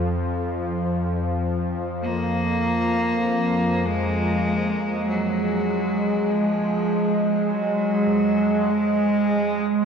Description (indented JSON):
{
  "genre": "dark ambient drone",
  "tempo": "free time",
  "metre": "none",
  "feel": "none",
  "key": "unclear",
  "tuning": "A4 = 440 Hz",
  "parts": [
    { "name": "clear concert grand piano", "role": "arpeggios", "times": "0.0-9.8 s", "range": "F2 to F3", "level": "-41 LUFS", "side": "equal", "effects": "tape echo" },
    { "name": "bowed-like drone", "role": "drone", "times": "0.0-9.8 s", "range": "F2 to Ab3", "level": "-22 LUFS", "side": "right 1 dB", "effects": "built-in reverb" },
    { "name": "clear cello", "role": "melody", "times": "2.0-9.8 s", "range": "F3 to Bb3", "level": "-24 LUFS", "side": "equal", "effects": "tape echo" }
  ],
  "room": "wet huge ambient reverb, RT60 7.9 s",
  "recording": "worn, warbling old tape, cassette tape, warbly pitch drift",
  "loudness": "-20 LUFS",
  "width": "side -6 dB against mid",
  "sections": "0.0-3.9 A section; 3.9-9.8 B section",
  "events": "none",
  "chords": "0.0 N.C.; 3.9 Fm"
}